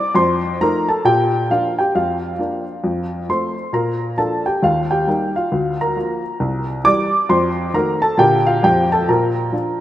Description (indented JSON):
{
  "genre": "jazz, stride piano",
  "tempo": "134 BPM",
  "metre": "4/4",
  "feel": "swing 63% on 8ths",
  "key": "Bb major",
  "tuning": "A4 = 440 Hz",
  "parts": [
    { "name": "warm upright piano", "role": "solo", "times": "0.0-9.8 s", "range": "C2 to D6", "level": "-15 LUFS", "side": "equal", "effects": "none" }
  ],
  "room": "moderate lush hall reverb, RT60 2.6 s",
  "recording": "rough home demo mix",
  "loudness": "-15 LUFS",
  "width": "side -13 dB against mid",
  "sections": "0.0-9.8 A section",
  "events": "none",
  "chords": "0.2 F7; 1.0 Bb; 1.9 Bb/F; 2.8 F; 3.7 Bb; 4.6 Eb; 5.5 Bb/D; 6.4 C7; 7.3 F7b9; 8.2 Bb; 8.6 F; 9.1 Bb"
}